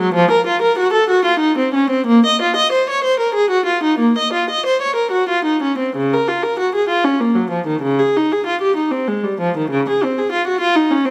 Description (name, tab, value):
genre	classical, baroque-style suite movement for unaccompanied viola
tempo	59-66 BPM (dotted quarters)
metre	12/8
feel	rubato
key	Bb minor, Db major from 6.0 s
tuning	A4 = 440 Hz
part	rich viola	solo	0.0-11.1 s	Db3 to Eb5	-16 LUFS	equal	none
room	moderate recital hall reverb, RT60 1.4 s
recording	none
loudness	-16 LUFS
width	mono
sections	0.0-6.0 A section; 6.0-11.1 A section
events	none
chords	none